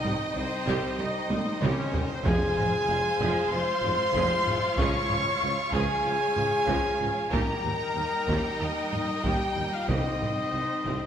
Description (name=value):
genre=cinematic, epic orchestral film score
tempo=94 BPM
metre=4/4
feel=straight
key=F minor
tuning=A4 = 437 Hz
part: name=warm symphonic violin section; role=melody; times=0.0-11.1 s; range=C5 to Db6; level=-36 LUFS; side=left 3 dB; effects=none
part: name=mellow hollow large flute ensemble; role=second line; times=0.0-11.1 s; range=C5 to Db6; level=-36 LUFS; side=right 1 dB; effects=none
part: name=rich studio violin section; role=second line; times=0.0-11.1 s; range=Bb4 to F5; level=-39 LUFS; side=right 2 dB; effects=none
part: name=warm symphonic viola section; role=accompaniment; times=0.0-11.1 s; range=F3 to Ab4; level=-36 LUFS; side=right 2 dB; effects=none
part: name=dark French horn section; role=sustained chords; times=0.0-11.1 s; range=C4 to Db5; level=-31 LUFS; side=left 3 dB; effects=none
part: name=rich symphonic string section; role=sustained chords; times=0.0-11.1 s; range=G3 to G5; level=-35 LUFS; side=equal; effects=none
part: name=mellow trumpet section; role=stabs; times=0.0-11.1 s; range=Db4 to Db6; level=-32 LUFS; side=right 1 dB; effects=none
part: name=mellow tuba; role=bass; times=0.0-11.0 s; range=F1 to Eb2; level=-37 LUFS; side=right 3 dB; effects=none
part: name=rich symphonic double bass section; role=bass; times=0.0-10.9 s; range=F1 to Eb2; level=-36 LUFS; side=right 2 dB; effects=none
part: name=taiko ensemble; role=drums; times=0.0-11.1 s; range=none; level=-33 LUFS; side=equal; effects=none
part: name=timpani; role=percussion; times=0.0-3.2, 9.9-10.8 s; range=F2 to C3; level=-36 LUFS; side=equal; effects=none
part: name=rich chamber cello section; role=bass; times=0.1-10.9 s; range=C2 to F2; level=-36 LUFS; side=right 2 dB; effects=none
room=wet recital hall reverb, RT60 1.7 s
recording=none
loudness=-24 LUFS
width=side -9 dB against mid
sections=0.0-11.1 A section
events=drum fill 1.3-2.2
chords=0.0 Cm; 2.2 Fm; 4.8 Db; 7.3 Eb; 9.9 Cm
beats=0.35 0.98 1.61 | 2.25 2.88 3.52 4.15 | 4.78 5.42 6.05 6.68 | 7.32 7.96 8.60 9.24 | 9.88 10.52